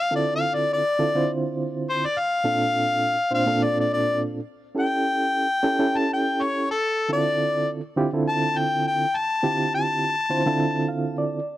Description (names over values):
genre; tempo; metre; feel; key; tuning
blues; 103 BPM; 4/4; swing 56% on 16ths; D minor; A4 = 440 Hz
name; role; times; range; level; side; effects
clear harmonica; melody; 0.0-10.9 s; A4 to A5; -23 LUFS; left 2 dB; overdrive
reed electric piano; accompaniment; 0.1-11.6 s; Bb2 to F5; -24 LUFS; right 2 dB; fast tremolo
room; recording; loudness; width
little or no reverb; dry, close 1970s-style studio recording; -21 LUFS; side -14 dB against mid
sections
0.0-11.6 A section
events
harmonica solo 0.0-11.6; reed electric piano fill 10.6-11.6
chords
0.0 Dm7; 2.4 Bbmaj7; 4.8 A7; 7.1 Dm7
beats
| 0.11 0.69 1.27 1.85 | 2.44 3.02 3.60 4.18 | 4.77 5.35 5.93 6.51 | 7.09 7.68 8.26 8.84 | 9.43 10.01 10.59 11.17